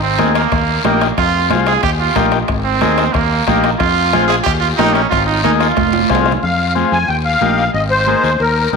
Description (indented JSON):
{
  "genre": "latin, cumbia",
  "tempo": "183 BPM",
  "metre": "4/4",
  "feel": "straight",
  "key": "F minor",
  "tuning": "A4 = 440 Hz",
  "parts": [
    { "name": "growling trumpet", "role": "second line", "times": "0.0-6.2 s", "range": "Bb3 to Ab4", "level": "-16 LUFS", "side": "right 7 dB", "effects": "none" },
    { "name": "fingered electric bass", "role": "bass", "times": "0.0-8.8 s", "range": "F1 to F2", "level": "-19 LUFS", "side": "equal", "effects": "none" },
    { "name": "overdriven combo organ", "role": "accompaniment", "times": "0.2-8.8 s", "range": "Bb3 to Ab4", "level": "-19 LUFS", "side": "left 10 dB", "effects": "none" },
    { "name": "bombo", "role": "percussion", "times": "0.2-6.4 s", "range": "none", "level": "-22 LUFS", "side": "left 5 dB", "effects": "none" },
    { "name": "congas", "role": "percussion", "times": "0.2-8.8 s", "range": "none", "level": "-22 LUFS", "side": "right 10 dB", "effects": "none" },
    { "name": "guiro", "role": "percussion", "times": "0.2-8.8 s", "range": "none", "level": "-27 LUFS", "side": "left 12 dB", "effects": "none" },
    { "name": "timbales", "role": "percussion", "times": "0.2-6.3 s", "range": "none", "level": "-28 LUFS", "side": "right 10 dB", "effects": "none" },
    { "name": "musette accordion", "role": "melody", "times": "6.4-8.8 s", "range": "Bb4 to Ab5", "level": "-15 LUFS", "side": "left 2 dB", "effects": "none" }
  ],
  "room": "wet echo chamber reverb, RT60 2.9 s",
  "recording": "1960s-style stereo with parts hard left and right",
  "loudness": "-12 LUFS",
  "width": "side -4 dB against mid",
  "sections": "0.0-6.4 A section; 6.4-8.8 B section",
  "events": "trumpet solo 0.0-6.4; drum fill 5.8-6.4",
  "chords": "0.0 Absus2; 0.5 Eb; 1.2 Fm; 1.8 Eb; 2.5 Absus2; 3.1 Eb; 3.8 Fm; 4.5 Eb; 5.1 Absus2; 5.8 Fm; 7.1 Eb; 7.7 Absus2"
}